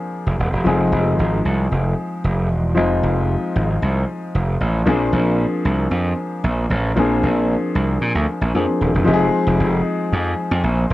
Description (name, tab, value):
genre	disco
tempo	114 BPM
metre	4/4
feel	straight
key	F dorian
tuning	A4 = 445 Hz
part	clear concert grand piano	accompaniment	0.0-10.9 s	F3 to Ab4	-20 LUFS	left 2 dB	none
part	gritty slap bass	bass	0.3-10.9 s	Eb1 to Bb2	-18 LUFS	right 1 dB	overdrive
room	light reverb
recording	dry, close 1970s-style studio recording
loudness	-16 LUFS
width	side -16 dB against mid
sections	0.0-9.1 A section; 9.1-10.9 B section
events	none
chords	0.0 Bb9; 0.7 Fm7; 4.9 Bb9; 9.1 Fm7